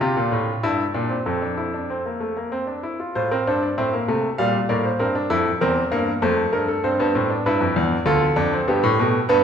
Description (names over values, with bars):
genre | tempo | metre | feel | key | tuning
classical, baroque-style 3-part fugue for grand piano | 98 BPM | 3/4 | straight | F major | A4 = 440 Hz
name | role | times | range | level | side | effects
clear concert grand piano | solo | 0.0-9.4 s | D2 to F5 | -19 LUFS | equal | none
room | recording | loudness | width
wet recital hall reverb, RT60 1.8 s | recorded in a church or concert hall | -19 LUFS | side -7 dB against mid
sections
0.0-3.1 A section; 3.1-9.4 B section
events
none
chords
0.0 F; 0.6 C7/G; 1.2 F; 3.1 F (rootless); 4.4 Gm7/Bb; 5.0 C7; 6.2 F; 6.8 C/G; 8.1 Dm7; 8.7 G